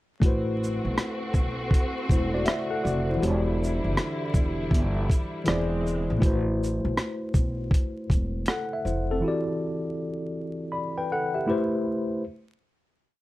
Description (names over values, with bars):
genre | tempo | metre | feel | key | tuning
lo-fi hip hop | 80 BPM | 4/4 | swing 66% on 16ths | A dorian | A4 = 440 Hz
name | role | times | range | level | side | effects
tine electric piano | accompaniment | 0.2-12.2 s | E3 to B5 | -28 LUFS | left 1 dB | medium stereo tremolo, low-pass filter
clear symphonic string section | sustained chords | 0.2-6.2 s | D3 to F#4 | -34 LUFS | equal | low-pass filter
upright bass | bass | 0.2-9.2 s | E1 to B1 | -29 LUFS | equal | none
boom bap sampler-style drum kit | drums | 0.2-9.1 s | hi-hat, kick drum, rim click, shaker | -23 LUFS | equal | none
room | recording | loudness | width
light reverb | vinyl crackle | -24 LUFS | side -17 dB against mid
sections
0.2-12.2 A section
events
none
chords
0.2 Am69; 3.2 Em7; 5.5 E7b13; 6.2 Am69; 9.2 Em7; 11.5 Am9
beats
| 0.22 0.97 1.72 2.47 | 3.22 3.97 4.72 5.47 | 6.22 6.97 7.72 8.47 | 9.22 9.97 10.72 11.47